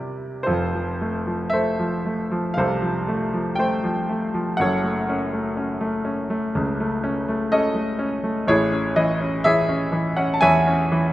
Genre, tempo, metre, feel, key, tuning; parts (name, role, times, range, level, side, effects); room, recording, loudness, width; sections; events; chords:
classical, lyrical solo piano; 54-64 BPM; 4/4; rubato; A4 = 440 Hz
clear grand piano; solo; 0.0-11.1 s; F1 to A5; -20 LUFS; equal
moderate recital hall reverb, RT60 1.7 s; dark, warm production; -20 LUFS; side -15 dB against mid
0.5-11.1 A section
0.5 F; 4.6 F#m; 8.5 Amaj7